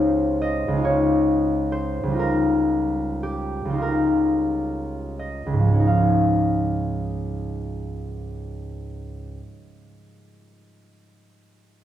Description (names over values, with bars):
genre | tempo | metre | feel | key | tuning
classical, solo harp piece | 27-48 BPM (dotted quarters) | 6/8 | rubato | Db lydian | A4 = 439 Hz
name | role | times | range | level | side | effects
concert harp | solo | 0.0-9.4 s | Db2 to F5 | -20 LUFS | equal | none
room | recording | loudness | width
wet recital hall reverb, RT60 1.6 s | dark, warm production | -20 LUFS | side -11 dB against mid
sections
0.0-5.9 A section; 5.9-9.6 B section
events
slowing down 0.0-5.9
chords
0.0 Dbmaj9; 2.2 Ebadd9/Db; 5.9 Dbadd9